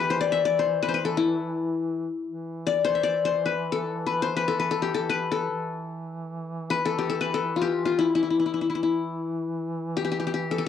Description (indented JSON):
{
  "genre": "Arabic maqam ensemble",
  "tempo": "free time",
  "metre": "none",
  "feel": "none",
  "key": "E minor",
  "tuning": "A4 = 440 Hz",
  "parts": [
    { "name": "qanun", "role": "melody", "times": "0.0-10.7 s", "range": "E4 to E5", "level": "-24 LUFS", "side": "left 6 dB", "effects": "cassette tape" },
    { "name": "mellow duduk", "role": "drone", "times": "0.0-10.7 s", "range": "E3", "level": "-34 LUFS", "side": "right 2 dB", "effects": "stereo widening, cassette tape" }
  ],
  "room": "moderate spring reverb, RT60 1.2 s, small room ambience",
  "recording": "home recording on cassette",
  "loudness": "-24 LUFS",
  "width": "side -8 dB against mid",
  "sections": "0.0-2.3 A section; 2.3-10.7 A section",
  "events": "none",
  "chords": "none",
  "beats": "free time"
}